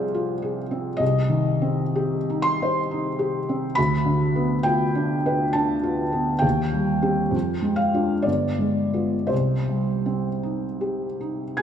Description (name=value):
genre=classical, romantic nocturne for solo piano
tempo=50-70 BPM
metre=3/4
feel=rubato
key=C minor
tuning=A4 = 440 Hz
part: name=felt-muted upright piano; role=solo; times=0.0-11.6 s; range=G1 to Ab6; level=-21 LUFS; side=equal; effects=none
room=moderate scoring stage reverb, RT60 2.0 s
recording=minimal, uncompressed stereo recording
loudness=-21 LUFS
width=side -8 dB against mid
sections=0.0-11.6 A section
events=none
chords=0.0 Fm/C; 1.0 Cm; 3.8 Bdim/D; 6.4 Cm/Eb; 7.3 Ddim/F; 8.3 G7b9; 9.3 Cm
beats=0.15 | 1.01 1.95 2.90 | 3.77 4.66 5.56 | 6.44 7.34 8.27 | 9.31 10.43 11.59